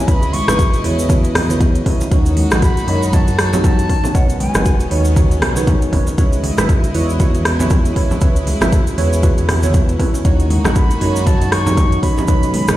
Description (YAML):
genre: afro house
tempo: 118 BPM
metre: 4/4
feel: swing 58% on 16ths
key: C# minor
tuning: A4 = 440 Hz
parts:
  - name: mellow silver concert flute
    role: melody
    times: 0.0-4.9, 10.8-12.8 s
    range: F#5 to C#6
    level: -25 LUFS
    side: left 1 dB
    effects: dub echo
  - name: rich studio string section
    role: sustained chords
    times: 0.0-12.8 s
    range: C#3 to D#5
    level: -27 LUFS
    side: left 1 dB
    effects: sidechain pumping
  - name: kalimba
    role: arpeggios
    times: 0.0-12.6 s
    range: G#3 to F#4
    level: -24 LUFS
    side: left 1 dB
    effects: sidechain pumping
  - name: deep mellow chord stab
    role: stabs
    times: 0.1-12.8 s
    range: D#4 to F#5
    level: -24 LUFS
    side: right 5 dB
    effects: chorus, sidechain pumping, dub echo
  - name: smooth synth bass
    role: bass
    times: 0.1-12.8 s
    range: F#1 to F#2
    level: -18 LUFS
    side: equal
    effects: sidechain pumping
  - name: afro-pop drum kit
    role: drums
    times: 0.1-12.8 s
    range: hi-hat, rim click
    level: -22 LUFS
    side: equal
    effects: none
  - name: electronic kick drum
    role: drums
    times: 0.1-12.4 s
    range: none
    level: -14 LUFS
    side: equal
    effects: none
  - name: cabasa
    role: percussion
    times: 0.1-12.8 s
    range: none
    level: -32 LUFS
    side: right 2 dB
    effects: none
  - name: congas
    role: percussion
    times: 0.1-12.8 s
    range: none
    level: -23 LUFS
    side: right 2 dB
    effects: none
room: light reverb, studio reverb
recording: played on a big sound system in a bare room, stone room reverb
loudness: -12 LUFS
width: side -14 dB against mid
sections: 0.0-12.8 A section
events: none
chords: 0.0 C#m7; 2.1 D#m7b5; 4.1 Badd9; 6.2 C#m7; 10.2 D#m7b5